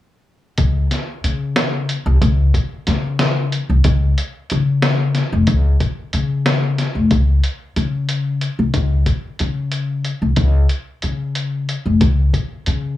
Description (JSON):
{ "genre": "progressive instrumental, band music in an uneven meter", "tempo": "184 BPM (eighths)", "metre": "5/8", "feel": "straight", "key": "Db major", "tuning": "A4 = 441 Hz", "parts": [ { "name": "upright bass", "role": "bass", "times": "0.6-13.0 s", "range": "F1 to Db3", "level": "-16 LUFS", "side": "left 1 dB", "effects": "none" }, { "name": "lo-fi sampler-style drum kit", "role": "drums", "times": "0.6-12.8 s", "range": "hi-hat, kick drum, snare drum", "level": "-20 LUFS", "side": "left 1 dB", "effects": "none" } ], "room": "little or no reverb", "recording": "small room ambience", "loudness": "-16 LUFS", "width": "side -14 dB against mid", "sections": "0.6-7.1 A section; 7.1-13.0 B section", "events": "none", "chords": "none" }